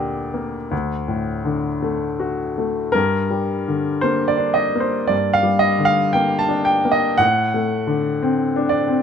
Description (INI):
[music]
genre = classical, romantic nocturne for solo piano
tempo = 52-59 BPM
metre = 4/4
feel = rubato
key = G minor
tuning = A4 = 441 Hz
[part]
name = clear baby grand piano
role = solo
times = 0.0-9.0 s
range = D2 to A5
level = -17 LUFS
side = left 1 dB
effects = none
[sound]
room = light reverb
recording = close, detailed microphones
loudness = -17 LUFS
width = side -7 dB against mid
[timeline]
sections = 0.0-9.0 A section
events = none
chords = 0.0 Gm/D; 0.7 D; 3.0 Gm; 7.2 D7/A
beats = 0.72 1.83 | 2.95 4.06 5.12 6.17 | 7.20 8.22